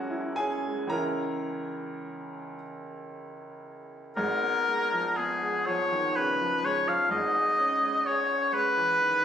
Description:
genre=classical, impressionist duo for oboe and grand piano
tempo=35-42 BPM (dotted quarters)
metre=6/8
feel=rubato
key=G# minor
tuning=A4 = 440 Hz
part: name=clear baby grand piano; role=accompaniment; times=0.0-9.2 s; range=E1 to A#5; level=-32 LUFS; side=right 1 dB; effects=none
part: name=clear oboe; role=melody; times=4.2-9.2 s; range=G#4 to E#5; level=-24 LUFS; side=left 1 dB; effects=none
room=moderate recital hall reverb, RT60 1.3 s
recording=recorded on a phone in the room, studio reverb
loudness=-25 LUFS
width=side -9 dB against mid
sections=0.0-4.2 A section; 4.2-9.2 B section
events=none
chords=0.0 E69; 0.9 C#m6; 4.2 G#m6; 7.1 C#m7/G#

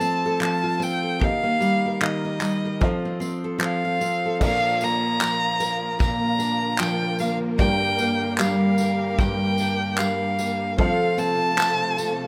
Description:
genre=acoustic pop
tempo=75 BPM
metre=4/4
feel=swing 60% on 16ths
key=Bb major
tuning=A4 = 440 Hz
part: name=warm violin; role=melody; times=0.0-12.3 s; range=Eb5 to Bb5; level=-27 LUFS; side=equal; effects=none
part: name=dark upright piano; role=accompaniment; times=0.0-12.3 s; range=A3 to G5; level=-36 LUFS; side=equal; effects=none
part: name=picked steel-string acoustic guitar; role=accompaniment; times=0.0-12.3 s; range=G2 to Bb4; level=-27 LUFS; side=equal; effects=none
part: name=modern studio drum kit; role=drums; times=0.0-12.2 s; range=crash cymbal, handclaps, kick drum, tambourine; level=-28 LUFS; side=equal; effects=none
part: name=warm studio string section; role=sustained chords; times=4.4-12.3 s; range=C3 to Bb4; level=-34 LUFS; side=equal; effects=none
part: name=tambourine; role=percussion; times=4.4-12.2 s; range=none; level=-41 LUFS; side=equal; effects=none
room=little or no reverb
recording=none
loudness=-23 LUFS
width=mono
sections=0.0-4.4 A section; 4.4-12.3 B section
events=none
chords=0.0 F; 1.2 Eb; 2.8 F; 4.4 Bb; 7.6 Gm; 10.8 F

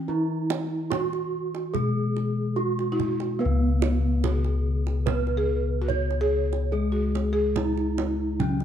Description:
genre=Javanese gamelan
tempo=72 BPM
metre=4/4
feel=straight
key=C# slendro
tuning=A4 = 440 Hz
part: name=gamelan-type bronze metallophone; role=melody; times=0.0-8.6 s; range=B3-25c to C#5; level=-29 LUFS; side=right 4 dB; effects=none
part: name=buzzing marimba with soft mallets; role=second line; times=0.0-8.6 s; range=C#4 to G#4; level=-29 LUFS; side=left 1 dB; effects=none
part: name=gamelan-type bronze metallophone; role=accompaniment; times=0.0-8.6 s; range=C#3 to B3-25c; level=-32 LUFS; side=left 2 dB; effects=none
part: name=gamelan-type bossed gongs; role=bass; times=0.0-8.6 s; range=C#2 to B4-25c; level=-26 LUFS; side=left 2 dB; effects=none
part: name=kendang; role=percussion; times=0.5-8.6 s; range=none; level=-32 LUFS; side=right 9 dB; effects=none
room=light reverb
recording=close, detailed microphones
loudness=-23 LUFS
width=side -9 dB against mid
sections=0.0-8.6 A section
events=none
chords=none

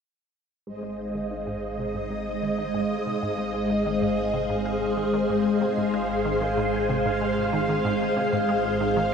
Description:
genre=ambient, sequencer-driven space music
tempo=94 BPM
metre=4/4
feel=straight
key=Ab major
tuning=A4 = 440 Hz
part: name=string machine, full ensemble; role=sustained chords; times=0.7-9.1 s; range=Ab3 to F5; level=-24 LUFS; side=equal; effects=phaser, ensemble chorus
part: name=resonant blip pluck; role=riff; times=0.7-9.1 s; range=Ab2 to Ab3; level=-33 LUFS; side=equal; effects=phaser, ping-pong delay
part: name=fat analog bass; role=bass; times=0.7-9.1 s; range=Ab1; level=-37 LUFS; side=equal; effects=none
part: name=bubbling stepped-filter texture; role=texture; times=1.2-9.1 s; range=F5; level=-33 LUFS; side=equal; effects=chorus, built-in reverb
room=wet huge ambient reverb, RT60 7.5 s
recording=dark, warm production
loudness=-23 LUFS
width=side -6 dB against mid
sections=0.7-9.1 A section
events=fade-in on synth arpeggio sound 0.7-9.1; fade-in on analog synth bass 0.7-9.1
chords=0.7 Ab

